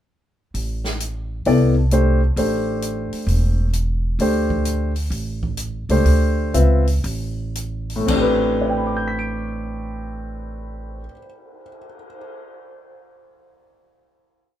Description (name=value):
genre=modal jazz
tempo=112-132 BPM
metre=4/4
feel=swing 66% on 8ths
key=A minor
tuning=A4 = 440 Hz
part: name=upright bass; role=bass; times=0.5-11.1 s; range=E1 to D2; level=-21 LUFS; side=equal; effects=none
part: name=open jazz drum kit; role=drums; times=0.5-12.2 s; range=crash cymbal, cymbal swell, hi-hat, kick drum, snare drum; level=-31 LUFS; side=right 1 dB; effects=none
part: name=warm concert grand piano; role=accompaniment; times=1.5-12.2 s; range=A2 to D7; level=-20 LUFS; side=left 1 dB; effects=none
room=light reverb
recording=minimal, uncompressed stereo recording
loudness=-18 LUFS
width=side -12 dB against mid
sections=0.5-8.1 A section; 8.1-12.4 final chord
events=slowing down 4.2-8.1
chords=0.5 Am11; 4.2 D7sus4; 8.1 Am11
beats=| 0.55 1.00 1.46 1.92 | 2.38 2.83 3.29 3.75 | 4.20 4.66 5.12 5.59 | 6.06 6.55 7.04 7.55 | 8.08 8.61 9.15 9.68 | 10.21 10.75 11.28 11.82